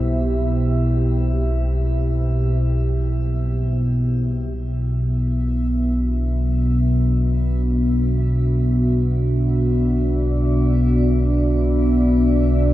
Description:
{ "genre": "dark ambient drone", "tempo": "free time", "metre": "none", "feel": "none", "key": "B minor", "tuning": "A4 = 440 Hz", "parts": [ { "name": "dark analog pad", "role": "sustained chords", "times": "0.0-12.7 s", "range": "B2 to E5", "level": "-22 LUFS", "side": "equal", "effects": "chorus, shimmer reverb" }, { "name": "analog drone", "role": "drone", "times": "0.0-12.7 s", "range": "B1 to B2", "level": "-18 LUFS", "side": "equal", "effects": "wide subtle chorus" }, { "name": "bubbling stepped-filter texture", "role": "texture", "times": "4.8-12.7 s", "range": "E5", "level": "-40 LUFS", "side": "equal", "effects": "chorus, built-in reverb, shimmer reverb" } ], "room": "light reverb", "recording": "dark, warm production", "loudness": "-17 LUFS", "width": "side -15 dB against mid", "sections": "0.0-4.6 A section; 4.6-12.7 B section", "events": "none", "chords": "0.0 C/B; 4.6 Bm", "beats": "free time" }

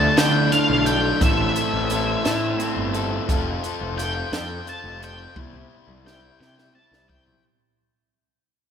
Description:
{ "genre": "indie rock", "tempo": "58 BPM (dotted quarters)", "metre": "6/8", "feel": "straight", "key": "unclear", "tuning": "A4 = 439 Hz", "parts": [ { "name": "octave-fuzz lead guitar", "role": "melody", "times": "0.0-7.4 s", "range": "E5 to A5", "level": "-24 LUFS", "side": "equal", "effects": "distortion" }, { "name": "raw garage guitar", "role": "riff", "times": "0.0-7.4 s", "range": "F3 to A4", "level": "-26 LUFS", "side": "left 5 dB", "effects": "overdrive" }, { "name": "twelve-string electric guitar", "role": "riff", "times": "0.0-3.3 s", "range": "A2 to E4", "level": "-26 LUFS", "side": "right 4 dB", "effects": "none" }, { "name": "fuzz picked electric bass", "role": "bass", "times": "0.0-7.3 s", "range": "F1 to D3", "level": "-27 LUFS", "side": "equal", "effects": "overdrive" }, { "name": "compact cocktail drum kit", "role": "drums", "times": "0.2-7.4 s", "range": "hi-hat, kick drum, snare drum, toms", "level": "-25 LUFS", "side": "right 1 dB", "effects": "none" } ], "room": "wet church reverb, RT60 2.5 s", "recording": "recorded in a church or concert hall", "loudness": "-19 LUFS", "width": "side -8 dB against mid", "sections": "0.0-7.4 A section", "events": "fade-out 0.0-7.4; lead electric guitar solo 0.0-7.4; drum fill 5.4-7.4", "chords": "0.0 Dmadd9; 1.2 Am; 3.3 F; 5.4 C", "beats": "0.18 | 1.21 2.25 | 3.28 4.32 | 5.36 6.39" }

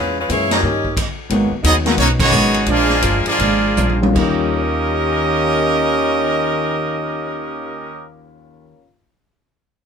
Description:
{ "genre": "jazz, big band swing", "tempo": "152-179 BPM", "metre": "4/4", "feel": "swing 64% on 8ths", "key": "unclear", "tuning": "A4 = 440 Hz", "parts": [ { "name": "bright saxophone section", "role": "melody", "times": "0.0-1.0 s", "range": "Ab3 to Eb5", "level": "-20 LUFS", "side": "left 2 dB", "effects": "none" }, { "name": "vintage hollow-body jazz guitar", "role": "accompaniment", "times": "0.0-8.8 s", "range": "Ab2 to G4", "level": "-28 LUFS", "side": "left 3 dB", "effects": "none" }, { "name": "upright bass", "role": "bass", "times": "0.0-8.7 s", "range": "G1 to G2", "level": "-20 LUFS", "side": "right 1 dB", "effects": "none" }, { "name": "clear concert grand piano", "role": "accompaniment", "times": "0.3-2.0, 4.0-9.1 s", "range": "Eb2 to Bb6", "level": "-24 LUFS", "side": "left 4 dB", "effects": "none" }, { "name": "swinging big-band drum kit", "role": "drums", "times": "0.3-4.3 s", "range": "crash cymbal, hi-hat, kick drum, ride cymbal, snare drum, toms", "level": "-21 LUFS", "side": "equal", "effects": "none" }, { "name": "muted trombone section", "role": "second line", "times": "0.5-8.1 s", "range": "Eb3 to G4", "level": "-21 LUFS", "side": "equal", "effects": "none" }, { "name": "bright trumpet section", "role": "stabs", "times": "0.5-0.6 s", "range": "G4 to Bb5", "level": "-23 LUFS", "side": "right 4 dB", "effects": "none" }, { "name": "brilliant trumpet section", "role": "melody", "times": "1.7-8.1 s", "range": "Gb3 to Eb5", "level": "-18 LUFS", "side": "right 1 dB", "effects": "none" } ], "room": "moderate club reverb, RT60 0.6 s", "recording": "minimal, uncompressed stereo recording", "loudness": "-14 LUFS", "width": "side -6 dB against mid", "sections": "0.0-1.3 A section; 1.3-4.2 B section; 4.2-7.3 C section", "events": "band accent 0.5, 2.1; stop 1.0-1.3; slowing down 1.3-4.2; drum fill 3.8-4.2", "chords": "0.0 Bbm7b5; 0.6 Eb7; 1.3 Abm7; 2.7 Bb7; 4.2 Eb9", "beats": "0.30 0.63 0.97 | 1.30 1.64 1.98 2.32 | 2.67 3.02 3.39 3.76 | 4.15 4.54 4.94 5.33 | 5.72 6.12 6.51 6.91" }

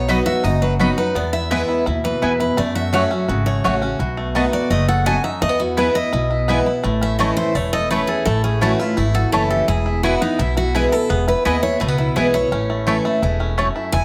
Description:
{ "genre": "bluegrass", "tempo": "169 BPM", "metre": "4/4", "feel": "straight", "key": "E major", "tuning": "A4 = 440 Hz", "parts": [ { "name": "bluegrass banjo", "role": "melody", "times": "0.0-14.0 s", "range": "E3 to A4", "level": "-28 LUFS", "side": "equal", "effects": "slapback echo, plate reverb" }, { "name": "picked steel-string acoustic guitar", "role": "melody", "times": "0.0-14.0 s", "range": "D#4 to G#5", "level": "-24 LUFS", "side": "equal", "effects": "plate reverb" }, { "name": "picked steel-string acoustic guitar", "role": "accompaniment", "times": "0.0-14.0 s", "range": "E2 to F#4", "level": "-24 LUFS", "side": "equal", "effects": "none" }, { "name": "upright bass", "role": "bass", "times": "0.0-14.0 s", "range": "E1 to F#2", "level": "-24 LUFS", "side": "equal", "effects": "none" }, { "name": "mandolin", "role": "stabs", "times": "0.1-13.7 s", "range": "A3 to B5", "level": "-24 LUFS", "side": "equal", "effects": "none" } ], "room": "moderate studio reverb, RT60 0.7 s", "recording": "none", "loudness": "-19 LUFS", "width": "mono", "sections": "0.0-6.8 A section; 6.8-14.0 B section", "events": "none", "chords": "0.0 B; 1.2 E; 2.6 F#m; 4.0 B7; 5.4 E; 6.8 A; 9.7 E; 12.5 A", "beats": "0.09 0.45 0.80 | 1.16 1.51 1.87 2.22 | 2.58 2.94 3.29 3.65 | 4.00 4.36 4.71 5.07 | 5.42 5.78 6.13 6.49 | 6.84 7.20 7.55 7.91 | 8.26 8.62 8.97 9.33 | 9.68 10.04 10.39 10.75 | 11.10 11.46 11.81 12.17 | 12.52 12.88 13.23 13.58 | 13.94" }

